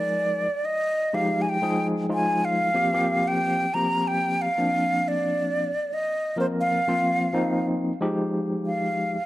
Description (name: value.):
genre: jazz.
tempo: 92 BPM.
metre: 4/4.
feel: swing 55% on 16ths.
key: F dorian.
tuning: A4 = 440 Hz.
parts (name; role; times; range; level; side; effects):
breathy mellow silver concert flute; melody; 0.0-9.3 s; C5 to Bb5; -24 LUFS; equal; none.
overdriven tine electric piano; accompaniment; 0.0-9.2 s; F3 to Bb4; -25 LUFS; left 1 dB; fast tremolo.
room: light reverb, small room ambience.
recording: dark, warm production.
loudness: -22 LUFS.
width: side -16 dB against mid.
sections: 0.0-8.0 A section; 8.0-9.3 B section.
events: flute solo 8.0-9.3.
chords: 0.0 Fm9; 2.8 C7sus4; 8.0 Fm9.